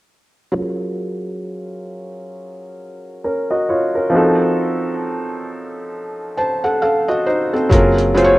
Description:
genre	lo-fi hip hop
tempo	67 BPM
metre	4/4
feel	swing 59% on 16ths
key	unclear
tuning	A4 = 436 Hz
part	felt-muted upright piano	accompaniment	0.5-8.4 s	F3 to A5	-17 LUFS	equal	low-pass filter
part	upright bass	bass	7.7-8.4 s	F#1	-18 LUFS	equal	none
part	dusty soul sampler-style drum kit	drums	7.7-8.4 s	hi-hat, kick drum	-17 LUFS	equal	none
room	light reverb, small room ambience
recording	rough home demo mix, cassette tape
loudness	-16 LUFS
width	side -18 dB against mid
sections	0.6-7.7 A section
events	filter sweep on felt piano 0.6-7.7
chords	0.6 F#maj9; 4.1 F7b9; 7.7 F#maj9

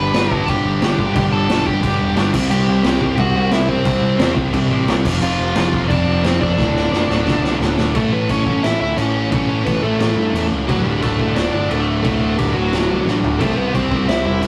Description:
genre	punk rock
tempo	176 BPM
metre	4/4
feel	straight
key	unclear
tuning	A4 = 441 Hz
part	dark smooth lead guitar	melody	0.0-14.4 s	F#3 to B5	-24 LUFS	equal	overdrive
part	overdriven semi-hollow guitar	riff	0.0-14.5 s	D2 to C4	-25 LUFS	equal	none
part	sludgy distorted guitar	riff	0.0-14.5 s	D2 to C5	-25 LUFS	equal	overdrive
part	tight distorted guitar	riff	0.0-14.5 s	D2 to C5	-28 LUFS	equal	distortion
part	growling picked electric bass	bass	0.0-14.5 s	D1 to G2	-26 LUFS	equal	overdrive
part	raw garage drum kit	drums	0.1-14.5 s	crash cymbal, kick drum, snare drum, toms	-23 LUFS	equal	none
room	moderate stone room reverb, RT60 1.2 s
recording	rough rehearsal-room recording, tube saturation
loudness	-17 LUFS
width	mono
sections	0.0-7.9 A section; 7.9-14.5 B section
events	drum fill 6.6-7.9, 13.1-13.4; half time 7.9-14.5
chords	0.0 G; 2.3 C; 5.0 F; 6.6 D; 7.9 A; 10.7 D; 13.4 C

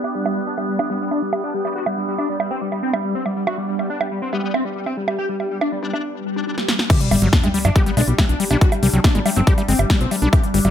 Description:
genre	psychedelic trance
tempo	140 BPM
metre	4/4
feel	straight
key	G major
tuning	A4 = 440 Hz
part	wide unison lead	melody	0.0-10.7 s	G3 to G4	-23 LUFS	left 1 dB	phaser, sidechain pumping, ping-pong delay
part	overtone-sweeping drone	sustained chords	0.0-10.7 s	B3 to D4	-31 LUFS	right 2 dB	chorus, built-in reverb, sidechain pumping
part	big-room dance drum kit	drums	0.0-10.7 s	bongos, crash cymbal, hi-hat, snare drum	-24 LUFS	right 2 dB	none
part	airy breathy pad	texture	0.0-6.0 s	D4 to G5	-31 LUFS	equal	chorus, sidechain pumping
part	metallic wobble bass	second line	0.9-8.7 s	G3 to D4	-33 LUFS	left 6 dB	distortion, chorus, sidechain pumping, high-pass filter, ping-pong delay
part	swell and sub drop	sound effects	6.2-8.6 s	none	-26 LUFS	left 1 dB	none
part	electronic kick drum	drums	6.9-10.4 s	none	-16 LUFS	left 1 dB	none
part	overdriven acid bass	riff	7.1-10.7 s	F#3 to G4	-22 LUFS	left 2 dB	distortion, auto-pan, sidechain pumping, ping-pong delay
part	fat analog bass	bass	7.1-10.7 s	G1 to G2	-18 LUFS	left 1 dB	none
room	light reverb, digital ambience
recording	low-pass filter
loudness	-17 LUFS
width	side -10 dB against mid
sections	0.0-6.9 A section; 6.9-10.7 B section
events	filter sweep 0.0-6.9; swell 6.2-6.9; drum fill 6.6-6.9; drop 6.9-10.7; impact 6.9-8.6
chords	0.0 G5

